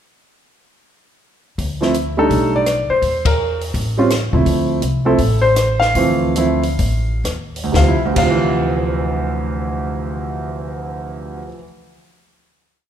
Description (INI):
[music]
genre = jazz piano trio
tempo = 117-167 BPM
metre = 4/4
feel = swing 64% on 8ths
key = D minor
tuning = A4 = 440 Hz
[part]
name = upright bass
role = bass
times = 1.6-11.4 s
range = A1 to E2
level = -21 LUFS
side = left 1 dB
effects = none
[part]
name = compact cocktail drum kit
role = drums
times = 1.6-8.3 s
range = crash cymbal, hi-hat, kick drum, ride cymbal, rim click, snare drum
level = -23 LUFS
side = left 2 dB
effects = none
[part]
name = warm concert grand piano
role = melody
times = 1.8-11.6 s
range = D2 to F5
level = -17 LUFS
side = right 1 dB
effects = none
[sound]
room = moderate recital hall reverb, RT60 1.5 s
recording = recorded in a church or concert hall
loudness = -15 LUFS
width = side -9 dB against mid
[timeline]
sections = 1.6-7.7 A section; 7.7-11.8 final chord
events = band accent 3.2; slowing down 4.5-7.7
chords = 1.6 D5; 2.3 B7alt; 3.0 C7/E; 3.7 Aaug; 4.5 Dm9